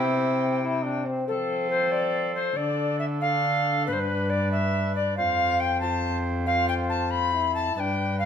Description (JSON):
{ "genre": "classical, renaissance-style consort dance", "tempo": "92 BPM (dotted quarters)", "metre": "6/8", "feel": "straight", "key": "unclear", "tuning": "A4 = 439 Hz", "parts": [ { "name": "alto recorder", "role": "melody", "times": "0.0-8.3 s", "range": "A4 to B5", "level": "-26 LUFS", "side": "left 2 dB", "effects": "none" }, { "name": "warm cor anglais", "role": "second line", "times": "0.0-8.3 s", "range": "E4 to C5", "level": "-32 LUFS", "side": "right 4 dB", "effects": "none" }, { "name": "brilliant trombone", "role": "accompaniment", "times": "0.0-8.2 s", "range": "C4 to F4", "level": "-31 LUFS", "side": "left 3 dB", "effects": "none" }, { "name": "rich cello", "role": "bass", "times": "0.0-8.3 s", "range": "F2 to F3", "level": "-29 LUFS", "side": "equal", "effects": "none" } ], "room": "wet stone room reverb, RT60 1.0 s", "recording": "heard from further back in the room", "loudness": "-23 LUFS", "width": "side -8 dB against mid", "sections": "0.0-1.3 A section; 1.3-8.3 B section", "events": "none", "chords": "0.0 C; 1.3 F; 2.6 Dm; 3.9 G; 5.2 F" }